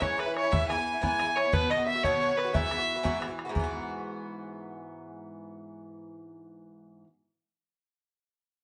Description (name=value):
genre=celtic folk, Celtic jig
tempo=119 BPM (dotted quarters)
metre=6/8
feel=straight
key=E major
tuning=A4 = 440 Hz
part: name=warm fiddle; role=melody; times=0.0-3.2 s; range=B4 to G#5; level=-31 LUFS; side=equal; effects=none
part: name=accordion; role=second line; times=0.0-3.2 s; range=B4 to G#5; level=-37 LUFS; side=equal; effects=none
part: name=open-back banjo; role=second line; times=0.0-3.2 s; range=B4 to G#5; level=-38 LUFS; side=equal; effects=none
part: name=Irish bouzouki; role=accompaniment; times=0.0-7.1 s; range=G#2 to F#4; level=-37 LUFS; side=equal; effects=none
part: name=bodhran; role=percussion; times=0.0-3.7 s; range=none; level=-34 LUFS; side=equal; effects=none
room=wet studio reverb, RT60 0.8 s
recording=band playing live in one room, nothing above 10.3 kHz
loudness=-28 LUFS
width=mono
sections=0.0-3.5 A section; 3.5-5.6 B section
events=none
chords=0.0 C#m; 0.5 E; 1.5 B; 2.5 Eadd9